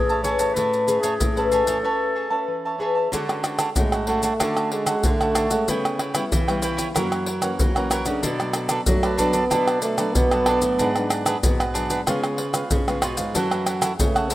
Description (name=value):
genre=samba and choro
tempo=94 BPM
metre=4/4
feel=straight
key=unclear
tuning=A4 = 444 Hz
part: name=warm clarinet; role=melody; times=0.0-2.8 s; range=G#4 to C#5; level=-25 LUFS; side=left 1 dB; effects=none
part: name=cavaquinho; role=accompaniment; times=0.0-14.3 s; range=D4 to A5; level=-26 LUFS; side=right 3 dB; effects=none
part: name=nylon-string guitar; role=accompaniment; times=0.0-14.3 s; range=F#2 to B4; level=-28 LUFS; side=left 3 dB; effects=none
part: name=nylon-string guitar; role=bass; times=0.0-14.3 s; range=G#2 to G#3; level=-28 LUFS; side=equal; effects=none
part: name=maracas, pandeiro, surdo and tamborim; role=percussion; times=0.1-14.3 s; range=none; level=-24 LUFS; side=equal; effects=none
part: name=breathy trombone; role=second line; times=3.8-14.3 s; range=G#3 to C#4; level=-24 LUFS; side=right 1 dB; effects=none
room=light reverb, studio ambience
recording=rough home demo mix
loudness=-19 LUFS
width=side -15 dB against mid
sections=0.0-3.1 A section; 3.1-14.3 B section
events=break 1.8-3.1; trombone solo 3.1-14.3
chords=0.0 Amaj9; 3.1 Dmaj7#11; 5.7 C#m7b5; 7.0 F#7; 8.2 Bm7; 10.8 G#m7b5; 12.1 C#7; 13.4 F#m7